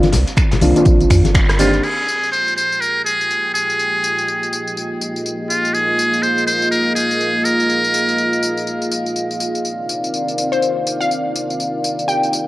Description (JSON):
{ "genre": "deep house", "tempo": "123 BPM", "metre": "4/4", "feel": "swing 60% on 16ths", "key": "F dorian", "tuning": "A4 = 442 Hz", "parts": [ { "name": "deep mellow chord stab", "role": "stabs", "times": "0.0-1.8 s", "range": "Eb3 to G4", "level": "-17 LUFS", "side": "equal", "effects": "chorus, sidechain pumping, analog delay" }, { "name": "warm sub bass", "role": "bass", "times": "0.0-1.8 s", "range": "G1 to F2", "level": "-17 LUFS", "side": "equal", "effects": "tube saturation, sidechain pumping" }, { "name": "deep house drum kit", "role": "drums", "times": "0.0-12.4 s", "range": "crash cymbal, finger snaps, hi-hat, rim click, tambourine", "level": "-24 LUFS", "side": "left 1 dB", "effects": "overdrive, cassette tape" }, { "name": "tight metal drum kit", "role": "drums", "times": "0.0-1.8 s", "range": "hi-hat, snare drum", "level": "-32 LUFS", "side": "equal", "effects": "high-pass filter on hats, cassette tape, high-pass filter on snare, high-pass filter on room" }, { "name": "congas", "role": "percussion", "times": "0.0-1.3 s", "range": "none", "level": "-20 LUFS", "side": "left 5 dB", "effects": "none" }, { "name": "electronic kick drum", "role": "drums", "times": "0.4-1.5 s", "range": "none", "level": "-16 LUFS", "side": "equal", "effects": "overdrive, cassette tape" }, { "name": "trumpet with metal mute", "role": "melody", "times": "1.6-8.9 s", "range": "F4 to C5", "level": "-18 LUFS", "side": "equal", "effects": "vintage 12-bit sampler grit, cassette tape, analog delay" }, { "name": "dark analog pad", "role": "sustained chords", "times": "1.8-12.5 s", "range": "Bb3 to G5", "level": "-21 LUFS", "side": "equal", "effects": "chorus, sidechain pumping" }, { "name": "glassy wavetable pluck", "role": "melody", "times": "10.5-12.3 s", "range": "C5 to G5", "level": "-20 LUFS", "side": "left 2 dB", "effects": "chorus, cassette tape, analog delay" } ], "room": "moderate spring reverb, RT60 2.4 s", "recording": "home recording on cassette", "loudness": "-15 LUFS", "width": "side -17 dB against mid", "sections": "0.0-1.8 A section; 1.8-12.5 B section", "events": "band accent 1.3", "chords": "0.0 Cm11; 1.8 Fm11; 9.6 Cm11" }